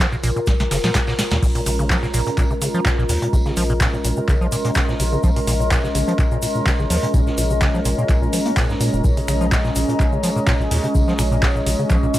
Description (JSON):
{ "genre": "acid house", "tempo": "126 BPM", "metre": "4/4", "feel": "swing 54% on 16ths", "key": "Bb minor", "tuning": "A4 = 445 Hz", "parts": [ { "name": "deep acid bass", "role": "riff", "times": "0.0-12.2 s", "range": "Ab2 to Bb3", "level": "-23 LUFS", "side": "equal", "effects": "overdrive, digital delay" }, { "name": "round analog bass", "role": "bass", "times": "0.0-12.1 s", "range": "F1 to Bb2", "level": "-23 LUFS", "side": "equal", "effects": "sidechain pumping" }, { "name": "booming analog drum machine", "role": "drums", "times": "0.0-12.2 s", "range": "crash cymbal, finger snaps, handclaps, hi-hat, snare drum", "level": "-25 LUFS", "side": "equal", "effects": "none" }, { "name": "electronic kick drum", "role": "drums", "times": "0.0-12.0 s", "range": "none", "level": "-20 LUFS", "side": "equal", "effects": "none" }, { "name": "street-band drum kit", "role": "drums", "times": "0.0-12.2 s", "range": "hi-hat, snare drum, tambourine", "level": "-34 LUFS", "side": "equal", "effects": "high-pass filter on hats, high-pass filter on snare, high-pass filter on perc, high-pass filter on room" }, { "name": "tube shaker", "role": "percussion", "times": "0.0-12.2 s", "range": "none", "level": "-34 LUFS", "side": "left 3 dB", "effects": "none" }, { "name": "warbly tape-like pad", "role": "texture", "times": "0.0-12.2 s", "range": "F4 to Db6", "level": "-27 LUFS", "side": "left 2 dB", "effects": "chorus, built-in reverb, sidechain pumping" }, { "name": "warm analog pad", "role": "sustained chords", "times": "1.4-12.2 s", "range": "Ab3 to Eb5", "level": "-24 LUFS", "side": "right 1 dB", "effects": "wide subtle chorus, sidechain pumping" } ], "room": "small room ambience", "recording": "none", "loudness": "-16 LUFS", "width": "side -14 dB against mid", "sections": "0.0-12.2 A section", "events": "filter sweep on acid bass 0.0-12.2; drum fill 0.5-1.4", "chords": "0.0 Bbm7" }